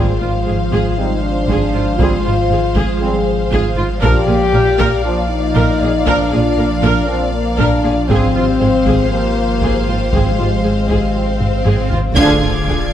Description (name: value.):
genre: cinematic, hybrid orchestral and electronic film score.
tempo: 118 BPM.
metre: 4/4.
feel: straight.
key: unclear.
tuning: A4 = 439 Hz.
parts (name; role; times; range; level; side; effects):
warm symphonic violin section; melody; 0.0-12.9 s; F5 to Ab6; -25 LUFS; left 4 dB; none.
warm symphonic violin section; second line; 0.0-12.9 s; D4 to F5; -25 LUFS; left 3 dB; none.
warm symphonic viola section; accompaniment; 0.0-12.9 s; F4 to Bb4; -22 LUFS; right 2 dB; none.
airy breathy pad; sustained chords; 0.0-12.9 s; D3 to D5; -23 LUFS; right 3 dB; chorus, phaser.
mellow French horn section; sustained chords; 0.0-12.4 s; Ab3 to Ab4; -18 LUFS; left 4 dB; none.
warm trombone section; sustained chords; 0.0-12.4 s; D3 to D4; -24 LUFS; right 3 dB; none.
rich studio cello section; bass; 0.0-12.8 s; Ab2 to D3; -22 LUFS; right 2 dB; none.
warm sub bass; bass; 0.0-12.9 s; D1 to Bb1; -21 LUFS; equal; none.
warm symphonic double bass section; bass; 0.0-12.8 s; Ab1 to D2; -22 LUFS; right 3 dB; none.
taiko ensemble; drums; 0.7-12.7 s; none; -21 LUFS; equal; none.
swell and impact; sound effects; 10.6-12.9 s; none; -25 LUFS; equal; none.
warm tuba; bass; 12.2-12.8 s; D2; -23 LUFS; right 3 dB; none.
room: moderate scoring stage reverb, RT60 1.4 s.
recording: close, detailed microphones.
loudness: -12 LUFS.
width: side -10 dB against mid.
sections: 0.0-12.2 A section.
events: swell 10.6-12.2; drum fill 11.4-12.2; band accent 12.2-12.7; impact 12.2-12.9.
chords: 0.0 Fmadd9/Ab; 4.0 Bb; 8.1 Fmadd9/Ab; 12.2 Ddim.